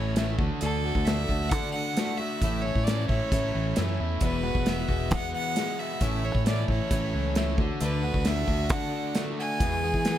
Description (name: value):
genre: folk rock and heartland rock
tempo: 134 BPM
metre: 4/4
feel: straight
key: A major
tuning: A4 = 439 Hz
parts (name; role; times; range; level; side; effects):
- bright fiddle; melody; 0.0-10.2 s; A4 to G#5; -32 LUFS; right 1 dB; plate reverb
- picked plugged-in twelve-string acoustic guitar; accompaniment; 0.0-10.2 s; E2 to G#4; -33 LUFS; left 3 dB; none
- biting overdriven guitar; riff; 0.0-10.2 s; E2 to G#4; -33 LUFS; right 1 dB; none
- fingered electric bass; bass; 0.0-10.2 s; E1 to E3; -29 LUFS; equal; none
- natural country drum kit; drums; 0.2-10.2 s; hi-hat, kick drum, snare drum; -28 LUFS; equal; none
room: light reverb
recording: none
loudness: -24 LUFS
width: side -11 dB against mid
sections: 0.0-10.2 A section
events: none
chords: 0.4 D; 2.4 A; 4.2 Eadd9; 6.0 A; 7.6 D; 9.6 E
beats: 0.16 | 0.61 1.06 1.52 1.97 | 2.42 2.87 3.32 3.77 | 4.22 4.67 5.12 5.57 | 6.02 6.47 6.92 7.36 | 7.81 8.26 8.71 9.16 | 9.61 10.05